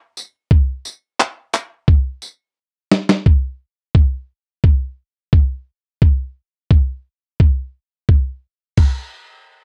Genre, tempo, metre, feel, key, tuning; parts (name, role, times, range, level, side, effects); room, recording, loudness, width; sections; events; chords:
pop; 87 BPM; 4/4; straight
dusty soul sampler-style drum kit; drums; 0.2-8.9 s; crash cymbal, handclaps, kick drum, snare drum, tambourine; -15 LUFS; equal
little or no reverb; dry, close 1970s-style studio recording; -18 LUFS; mono
0.0-3.3 A section; 3.3-8.8 B section
drum fill 2.6-3.3